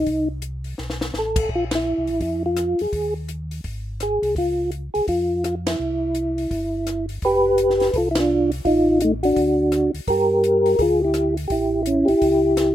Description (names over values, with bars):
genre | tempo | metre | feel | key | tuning
soul jazz organ trio | 168 BPM | 4/4 | swing 63% on 8ths | F major from 7.2 s | A4 = 440 Hz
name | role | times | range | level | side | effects
percussive tonewheel organ | melody | 0.0-12.7 s | A3 to B4 | -18 LUFS | equal | slow rotary speaker, chorus vibrato
mellow tonewheel organ | bass | 0.0-12.7 s | F1 to G2 | -29 LUFS | equal | chorus vibrato, slow rotary speaker
compact cocktail drum kit | drums | 0.1-12.7 s | crash cymbal, hi-hat, kick drum, ride cymbal, rim click, snare drum | -30 LUFS | left 1 dB | none
room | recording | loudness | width
light reverb | rough home demo mix | -18 LUFS | side -12 dB against mid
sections
0.0-7.2 A section; 7.2-12.7 B section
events
drum fill 0.8-1.1; band accent 1.7, 5.6, 8.1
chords
0.1 Cm; 0.8 Asus2; 1.5 Bbsus2; 2.9 Ebsus4; 3.6 Ab; 4.4 Db; 5.8 C; 7.2 Fsus2; 8.7 F7/A; 9.4 D; 10.1 Gm; 11.5 A7